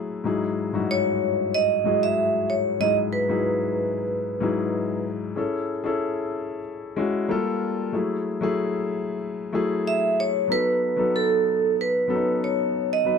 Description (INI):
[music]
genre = soul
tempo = 94 BPM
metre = 4/4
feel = straight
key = E major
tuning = A4 = 441 Hz
[part]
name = warm concert grand piano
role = accompaniment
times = 0.0-13.2 s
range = G2 to B4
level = -25 LUFS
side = left 4 dB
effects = none
[part]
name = vibraphone with hard mallets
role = melody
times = 0.9-5.0, 9.9-13.2 s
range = A4 to E5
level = -22 LUFS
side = right 3 dB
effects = none
[sound]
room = light reverb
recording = dry, close 1970s-style studio recording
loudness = -22 LUFS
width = side -6 dB against mid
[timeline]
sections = 0.0-13.2 A section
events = none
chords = 0.2 Emaj9; 5.4 Amaj7; 7.3 Gm9; 7.9 F#m9; 10.5 B7